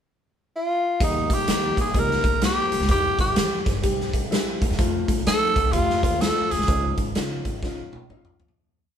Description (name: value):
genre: uptempo 1960s-style soul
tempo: 127 BPM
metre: 4/4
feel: swing 64% on 8ths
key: Eb mixolydian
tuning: A4 = 440 Hz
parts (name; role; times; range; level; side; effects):
- growling tenor saxophone; melody; 0.6-7.0 s; Eb4 to Bb4; -23 LUFS; equal; none
- dark upright piano; accompaniment; 1.0-8.5 s; G3 to G4; -29 LUFS; left 3 dB; none
- upright bass; bass; 1.0-8.5 s; G1 to F3; -29 LUFS; equal; none
- raw garage drum kit; drums; 1.0-8.6 s; hi-hat, kick drum, snare drum, toms; -24 LUFS; equal; none
room: moderate stone room reverb, RT60 1.3 s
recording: band playing live in one room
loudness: -20 LUFS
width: side -8 dB against mid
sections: 0.0-1.0 pickup bar; 1.0-8.6 verse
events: fade-out 6.7-8.6; drum fill 7.6-8.6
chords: 0.0 N.C.; 1.0 Eb; 2.9 C; 4.8 F; 6.7 Dbadd9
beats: 0.06 0.53 | 1.00 1.48 1.95 2.42 | 2.89 3.37 3.84 4.31 | 4.79 5.26 5.73 6.21 | 6.68 7.15 7.62 8.10